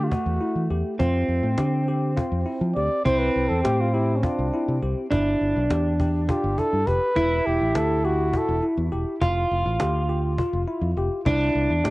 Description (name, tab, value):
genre	progressive instrumental, band music in an uneven meter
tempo	205 BPM (eighths)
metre	7/8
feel	straight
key	E phrygian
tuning	A4 = 439 Hz
part	breathy trumpet	melody	0.0-8.6 s	C#4 to D5	-26 LUFS	equal	cassette tape
part	electric guitar at the edge of break-up	second line	0.0-11.9 s	A3 to F4	-25 LUFS	right 2 dB	cassette tape, analog delay
part	bell-like tine electric piano	arpeggios	0.0-11.9 s	E4 to G4	-30 LUFS	left 3 dB	wide subtle chorus, cassette tape, analog delay
part	fingered electric bass	bass	0.0-11.9 s	E1 to F3	-25 LUFS	equal	none
part	cajon	drums	0.1-11.9 s	none	-27 LUFS	equal	cassette tape
room	light reverb, small room ambience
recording	home recording on cassette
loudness	-21 LUFS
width	side -20 dB against mid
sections	0.0-11.9 A section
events	trumpet solo 0.0-11.9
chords	0.0 Emadd9; 1.0 F5; 3.1 Cadd9; 5.1 G5; 7.2 Em11; 9.2 N.C.; 11.3 Cadd9